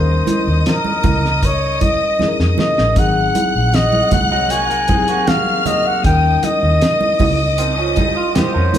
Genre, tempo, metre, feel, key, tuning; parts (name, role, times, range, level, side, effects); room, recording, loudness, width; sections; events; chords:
lush 1970s-style soul; 78 BPM; 4/4; straight; Eb dorian; A4 = 440 Hz
warm flugelhorn; melody; 0.0-8.8 s; Bb4 to Ab5; -18 LUFS; equal
warm studio string section; second line; 0.0-8.8 s; Eb5 to Gb6; -22 LUFS; left 3 dB
bright tine electric piano; accompaniment; 0.0-8.8 s; Gb3 to Bb4; -24 LUFS; left 4 dB
vintage muted fingered electric bass; bass; 0.0-8.7 s; Ab1 to F2; -19 LUFS; equal
cloth-damped thuddy drum kit; drums; 0.3-8.8 s; hi-hat, kick drum, snare drum; -20 LUFS; equal
congas; percussion; 0.3-8.8 s; -23 LUFS; right 3 dB
electric guitar through a small old amp; riff; 4.3-8.8 s; Eb3 to Bb4; -22 LUFS; right 4 dB
wet large studio reverb, RT60 1.3 s; band playing live in one room; -13 LUFS; side -10 dB against mid
0.0-8.8 A section
drum fill 2.2-3.0
0.0 Eb7; 3.0 Ab7; 6.0 Eb7